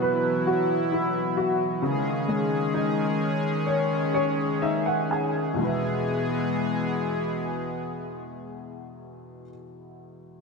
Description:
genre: pop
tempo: 60-68 BPM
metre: 4/4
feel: straight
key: E major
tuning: A4 = 441 Hz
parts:
  - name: clear baby grand piano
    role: accompaniment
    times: 0.0-10.4 s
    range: E2 to G#5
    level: -27 LUFS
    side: left 1 dB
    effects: lush chorus
  - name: chorused pulse-width pad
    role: sustained chords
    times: 0.0-9.5 s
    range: D#3 to G#4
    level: -27 LUFS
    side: equal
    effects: none
room: wet lush hall reverb, RT60 2.1 s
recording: bright 1980s-style digital production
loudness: -23 LUFS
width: side -4 dB against mid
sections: 0.0-5.6 A section; 5.6-9.6 B section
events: slowing down 0.0-5.6; grand piano fill 3.7-5.6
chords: 0.0 Bsus4; 1.8 C#sus2; 5.6 E

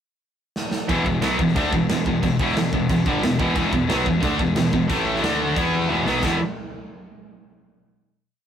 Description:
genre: heavy metal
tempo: 180 BPM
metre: 4/4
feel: straight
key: E minor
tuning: A4 = 444 Hz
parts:
  - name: big rock drum kit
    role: drums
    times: 0.6-6.3 s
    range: crash cymbal, kick drum, snare drum, toms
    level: -26 LUFS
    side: equal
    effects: none
  - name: cranked stack guitar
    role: riff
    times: 0.9-6.4 s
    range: E2 to E4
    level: -28 LUFS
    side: right 1 dB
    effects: none
  - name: scooped high-gain guitar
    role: riff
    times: 0.9-6.4 s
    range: E2 to E4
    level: -22 LUFS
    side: left 3 dB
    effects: distortion
  - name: tight distorted guitar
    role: riff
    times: 0.9-6.4 s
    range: E2 to E4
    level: -24 LUFS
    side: right 4 dB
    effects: distortion
  - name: fuzz picked electric bass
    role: bass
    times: 0.9-6.4 s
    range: E1 to E2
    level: -29 LUFS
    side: equal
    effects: overdrive
room: light reverb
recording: rough rehearsal-room recording, warm saturation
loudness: -19 LUFS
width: side -9 dB against mid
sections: 0.0-0.9 pickup bar; 0.9-6.2 riff; 6.2-7.6 final chord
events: drum fill 0.6-0.9, 5.9-6.2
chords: 0.0 N.C.; 0.9 Em; 4.9 A5; 5.2 D5; 5.6 E5

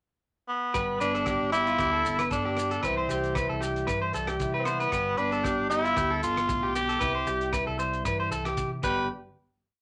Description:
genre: highlife guitar band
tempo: 115 BPM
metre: 4/4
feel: swing 54% on 16ths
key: G mixolydian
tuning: A4 = 436 Hz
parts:
  - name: raspy tenor saxophone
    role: melody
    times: 0.5-9.1 s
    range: B3 to B4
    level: -30 LUFS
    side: equal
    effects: none
  - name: mellow electric guitar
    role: accompaniment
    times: 0.7-9.1 s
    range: G2 to G4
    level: -37 LUFS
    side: equal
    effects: none
  - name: electric guitar at the edge of break-up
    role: arpeggios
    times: 0.7-9.1 s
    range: F4 to C5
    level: -32 LUFS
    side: equal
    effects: none
  - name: fingered electric bass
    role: bass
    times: 0.7-9.1 s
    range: G1 to C3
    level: -40 LUFS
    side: equal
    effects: none
  - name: cloth-damped thuddy drum kit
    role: drums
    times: 0.7-9.0 s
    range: crash cymbal, hi-hat, kick drum, rim click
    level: -39 LUFS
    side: equal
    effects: none
  - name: maracas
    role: percussion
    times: 0.7-9.1 s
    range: none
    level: -46 LUFS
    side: equal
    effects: none
room: wet small room reverb, RT60 0.5 s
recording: none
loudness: -28 LUFS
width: mono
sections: 0.0-0.7 pickup bar; 0.7-9.1 A section; 9.1-9.8 final hit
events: none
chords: 0.0 N.C.; 0.7 G; 2.8 C; 4.9 G; 7.0 C; 8.8 G; 9.1 N.C.

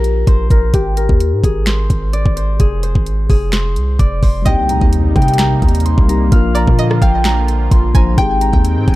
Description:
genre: hip hop, trap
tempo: 129 BPM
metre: 4/4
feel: half-time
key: C minor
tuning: A4 = 440 Hz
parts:
  - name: Celtic harp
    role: melody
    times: 0.0-9.0 s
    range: F4 to C6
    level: -20 LUFS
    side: left 1 dB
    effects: low-pass filter, digital delay
  - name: long sustained 808-style bass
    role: bass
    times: 0.0-9.0 s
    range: F1 to C3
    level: -15 LUFS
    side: equal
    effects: none
  - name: trap drum kit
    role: drums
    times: 0.0-9.0 s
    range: finger snaps, hi-hat, kick drum, rim click, snare drum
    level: -14 LUFS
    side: equal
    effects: none
  - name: mellow tine electric piano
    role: accompaniment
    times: 4.4-9.0 s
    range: F3 to C5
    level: -20 LUFS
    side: left 5 dB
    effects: low-pass filter
  - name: string-like resonator pluck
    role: second line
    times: 4.5-8.6 s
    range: D5 to Ab5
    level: -26 LUFS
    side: right 2 dB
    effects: chorus, digital delay
  - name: warm analog pad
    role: sustained chords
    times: 4.5-9.0 s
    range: C3 to G5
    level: -23 LUFS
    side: equal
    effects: chorus
  - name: impact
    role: sound effects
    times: 4.5-6.3 s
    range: none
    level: -23 LUFS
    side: equal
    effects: none
room: little or no reverb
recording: dark, warm production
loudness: -11 LUFS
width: side -17 dB against mid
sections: 0.0-4.5 A section; 4.5-9.0 B section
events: impact 4.5-6.3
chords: 0.0 Bbsus2; 0.7 Ab; 2.6 Fm; 4.5 Cm7; 6.3 Bb; 8.2 Abmaj7

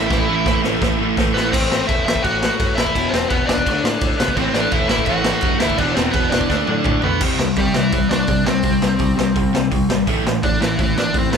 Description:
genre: punk rock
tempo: 169 BPM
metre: 4/4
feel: straight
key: unclear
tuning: A4 = 442 Hz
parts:
  - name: crunchy overdriven guitar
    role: melody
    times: 0.0-11.4 s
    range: E3 to F#5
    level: -21 LUFS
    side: equal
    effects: ping-pong delay
  - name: distorted electric guitar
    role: riff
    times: 0.0-11.4 s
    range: E2 to D4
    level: -22 LUFS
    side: left 8 dB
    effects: distortion
  - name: sludgy distorted guitar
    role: riff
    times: 0.0-1.5, 4.4-11.4 s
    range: E2 to D4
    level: -22 LUFS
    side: right 11 dB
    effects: overdrive
  - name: growling picked electric bass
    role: bass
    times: 0.0-11.4 s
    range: E1 to C3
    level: -26 LUFS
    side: equal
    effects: overdrive
  - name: raw garage drum kit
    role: drums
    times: 0.1-11.4 s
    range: crash cymbal, hi-hat, kick drum, snare drum, toms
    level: -20 LUFS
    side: equal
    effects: none
room: light reverb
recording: band playing live in one room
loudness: -15 LUFS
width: side -6 dB against mid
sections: 0.0-1.5 A section; 1.5-7.2 B section; 7.2-11.4 C section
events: drum fill 0.1-1.5, 6.5-7.2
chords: 0.0 A5; 1.5 Am; 2.9 E5; 3.7 D5; 4.4 Am; 5.8 E5; 6.5 D5; 7.2 C; 10.1 Am

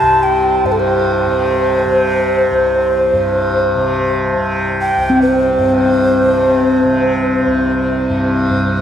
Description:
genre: world meditative, free-time meditation music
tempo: free time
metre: none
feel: none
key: unclear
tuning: A4 = 437 Hz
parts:
  - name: breathy alto ocarina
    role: melody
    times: 0.0-7.6 s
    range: A4 to A5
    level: -15 LUFS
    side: equal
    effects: shimmer reverb, diffuse ambient delay
  - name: tanpura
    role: drone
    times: 0.0-8.8 s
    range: C2 to C3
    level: -18 LUFS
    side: equal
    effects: none
  - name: bronze singing bowl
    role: texture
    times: 0.0-8.8 s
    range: C4 to G4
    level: -18 LUFS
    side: left 1 dB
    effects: shimmer reverb
room: wet cathedral reverb, RT60 6.8 s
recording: dark, warm production, lossy compression artefacts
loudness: -12 LUFS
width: side -9 dB against mid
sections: 0.0-8.5 A section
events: none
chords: none

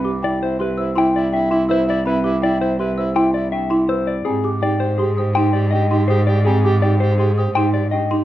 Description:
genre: classical, minimalist pattern music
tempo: 164 BPM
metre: 6/4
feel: straight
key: C major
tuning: A4 = 439 Hz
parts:
  - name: mellow electric guitar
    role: melody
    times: 0.0-8.2 s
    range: Ab4 to G5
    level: -23 LUFS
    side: left 6 dB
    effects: none
  - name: warm soprano saxophone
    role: second line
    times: 0.0-8.2 s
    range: E4 to G4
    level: -24 LUFS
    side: right 2 dB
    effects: none
  - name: celesta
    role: arpeggios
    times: 0.0-8.2 s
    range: G5 to E6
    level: -27 LUFS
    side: left 1 dB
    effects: none
  - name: folk marimba with medium mallets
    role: arpeggios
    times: 0.0-8.2 s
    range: C4 to C5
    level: -21 LUFS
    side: right 2 dB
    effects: none
  - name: rich cello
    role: bass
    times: 0.0-8.2 s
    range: C2 to Ab2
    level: -20 LUFS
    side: right 1 dB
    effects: none
room: moderate large studio reverb, RT60 0.9 s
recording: worn, warbling old tape, cassette tape, warbly pitch drift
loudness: -16 LUFS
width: side -13 dB against mid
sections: 0.0-8.2 A section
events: none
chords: 0.0 Cmaj7; 4.3 Abmaj7

